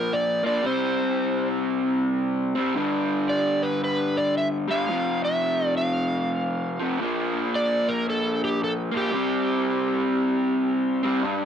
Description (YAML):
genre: rock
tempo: 113 BPM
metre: 4/4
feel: swing 62% on 8ths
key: unclear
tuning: A4 = 440 Hz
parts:
  - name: overdriven slide guitar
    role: melody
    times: 0.0-11.0 s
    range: G4 to F5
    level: -26 LUFS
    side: right 1 dB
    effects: slapback echo
  - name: raw garage guitar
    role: riff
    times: 0.0-11.5 s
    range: F2 to C4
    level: -24 LUFS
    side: left 1 dB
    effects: overdrive
room: little or no reverb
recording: dry, close 1970s-style studio recording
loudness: -22 LUFS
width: side -8 dB against mid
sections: 0.0-11.2 A section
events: none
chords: 0.0 Bb5; 0.6 C5; 2.8 G5; 4.9 F5; 7.0 Bb5; 9.1 C5